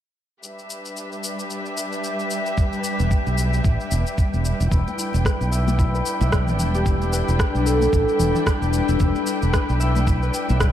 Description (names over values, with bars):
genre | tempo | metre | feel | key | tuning
organic downtempo | 112 BPM | 4/4 | swing 58% on 16ths | E minor | A4 = 441 Hz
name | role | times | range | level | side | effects
warm chamber string section | sustained chords | 0.4-10.7 s | G3 to G5 | -28 LUFS | equal | sidechain pumping, low-pass filter
electronic shaker and rim click | drums | 0.4-10.7 s | none | -29 LUFS | left 1 dB | small room reverb
wind-like tuned noise texture | texture | 1.2-10.7 s | G3 to G5 | -32 LUFS | equal | built-in reverb
electronic kick drum | drums | 2.6-10.7 s | none | -21 LUFS | equal | small room reverb
fretless electric bass | bass | 3.0-10.7 s | E1 to B1 | -21 LUFS | equal | analog chorus
concert harp | arpeggios | 4.7-10.7 s | D4 to E5 | -24 LUFS | left 2 dB | low-pass filter, digital delay
congas | percussion | 4.9-10.6 s | none | -30 LUFS | left 3 dB | none
room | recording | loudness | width
light reverb, studio reverb | dark, warm production | -19 LUFS | side -11 dB against mid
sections
0.4-4.7 A section; 4.7-10.7 B section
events
filter sweep on harp 4.7-10.7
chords
0.4 Em7